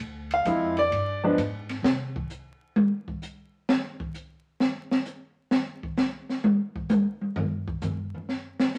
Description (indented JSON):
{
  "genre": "jazz piano trio",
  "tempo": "130 BPM",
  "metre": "4/4",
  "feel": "swing 68% on 8ths",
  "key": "unclear",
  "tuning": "A4 = 440 Hz",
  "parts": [
    { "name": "upright bass", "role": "bass", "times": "0.0-2.1 s", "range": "D2 to C3", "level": "-37 LUFS", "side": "equal", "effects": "none" },
    { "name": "open jazz drum kit", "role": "drums", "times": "0.0-8.8 s", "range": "hi-hat, kick drum, ride cymbal, snare drum, toms", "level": "-28 LUFS", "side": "equal", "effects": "none" },
    { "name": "warm grand piano", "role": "melody", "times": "0.3-1.4 s", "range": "F3 to F5", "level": "-25 LUFS", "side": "equal", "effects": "none" }
  ],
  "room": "moderate studio reverb, RT60 0.8 s",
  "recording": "vinyl crackle",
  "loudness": "-27 LUFS",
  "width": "mono",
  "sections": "0.0-8.8 A section",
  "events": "grand piano solo 0.0-8.8; drum solo 1.8-8.8",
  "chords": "0.0 Dm7b5; 0.9 G5; 1.8 N.C."
}